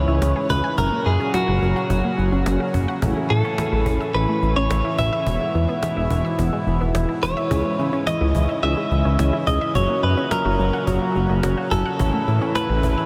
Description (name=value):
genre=synth-pop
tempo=107 BPM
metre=4/4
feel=straight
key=unclear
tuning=A4 = 440 Hz
part: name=direct-recorded clean electric guitar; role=melody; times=0.0-13.1 s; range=F#4 to E5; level=-27 LUFS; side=equal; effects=lush chorus, delay
part: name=chorused pulse-width pad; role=sustained chords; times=0.0-13.1 s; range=G#2 to F#4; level=-27 LUFS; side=equal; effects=none
part: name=unison pluck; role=arpeggios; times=0.0-13.1 s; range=E3 to G#5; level=-30 LUFS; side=equal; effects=analog chorus, delay
part: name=chorused synth bass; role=bass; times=0.0-13.0 s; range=E1 to C#3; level=-23 LUFS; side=equal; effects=none
part: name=impact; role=sound effects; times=0.0-0.8 s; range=none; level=barely audible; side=none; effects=none
part: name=cajon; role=drums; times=0.1-13.0 s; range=none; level=-32 LUFS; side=equal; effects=none
room=wet huge ambient reverb, RT60 7.7 s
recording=dreamy mix soaked in reverb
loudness=-21 LUFS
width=mono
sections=0.0-13.1 A section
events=impact 0.0-0.8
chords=0.0 C#m; 0.8 F#; 3.0 A; 5.3 E; 7.5 C#m; 9.8 F#; 12.0 A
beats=0.22 | 0.78 1.34 1.90 2.46 | 3.02 3.58 4.14 4.71 | 5.27 5.83 6.39 6.95 | 7.51 8.07 8.63 9.19 | 9.75 10.31 10.87 11.43 | 11.99 12.56